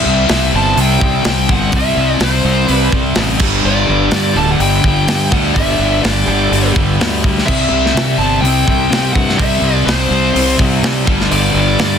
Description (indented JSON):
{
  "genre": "hard rock",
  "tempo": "125 BPM",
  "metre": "4/4",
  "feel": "straight",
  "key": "unclear",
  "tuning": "A4 = 440 Hz",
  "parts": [
    { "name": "bluesy overdriven lead guitar", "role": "melody", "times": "0.0-12.0 s", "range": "C5 to A5", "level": "-18 LUFS", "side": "left 1 dB", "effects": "distortion, slapback echo" },
    { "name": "biting overdriven guitar", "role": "riff", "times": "0.0-12.0 s", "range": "G2 to C4", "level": "-19 LUFS", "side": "left 11 dB", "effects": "none" },
    { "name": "high-gain distorted guitar", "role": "riff", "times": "0.0-12.0 s", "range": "G2 to C4", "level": "-20 LUFS", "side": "left 1 dB", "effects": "distortion" },
    { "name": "overdriven semi-hollow guitar", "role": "riff", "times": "0.0-12.0 s", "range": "G2 to C4", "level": "-20 LUFS", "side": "right 10 dB", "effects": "none" },
    { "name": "fuzz fingered electric bass", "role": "bass", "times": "0.1-12.0 s", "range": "D1 to C3", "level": "-17 LUFS", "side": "equal", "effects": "overdrive" },
    { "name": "tight metal drum kit", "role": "drums", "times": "0.3-11.9 s", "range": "crash cymbal, hi-hat, kick drum, snare drum", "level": "-17 LUFS", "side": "equal", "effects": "none" }
  ],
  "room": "light reverb",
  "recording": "dense, heavily limited modern master",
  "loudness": "-11 LUFS",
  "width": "side -8 dB against mid",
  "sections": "0.0-12.0 A section",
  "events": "none",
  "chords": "0.0 C; 3.4 G5; 7.5 C; 11.1 G5",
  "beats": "0.29 0.77 1.25 | 1.73 2.20 2.68 3.16 | 3.64 4.12 4.60 5.08 | 5.55 6.03 6.51 6.99 | 7.47 7.95 8.43 8.91 | 9.39 9.87 10.35 10.83 | 11.31 11.79"
}